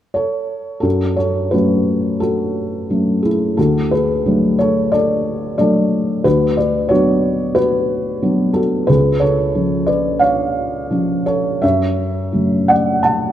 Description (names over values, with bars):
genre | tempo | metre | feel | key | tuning
classical, lyrical solo piano | 89 BPM | 4/4 | uneven beats, rubato | F# minor | A4 = 445 Hz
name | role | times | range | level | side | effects
felt-muted upright piano | solo | 0.1-13.3 s | C#2 to A5 | -14 LUFS | equal | none
room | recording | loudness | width
moderate concert hall reverb, RT60 2.0 s | dark, warm production | -14 LUFS | side -11 dB against mid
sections
0.8-13.3 A section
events
none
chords
0.0 N.C.; 0.8 F#m; 3.6 D; 6.2 Bm/D; 8.9 C#; 11.6 F#m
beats
0.14 | 0.82 1.52 2.22 2.90 | 3.58 4.25 4.92 5.59 | 6.25 6.91 7.56 8.22 | 8.89 9.55 10.22 10.92 | 11.63 12.34 13.02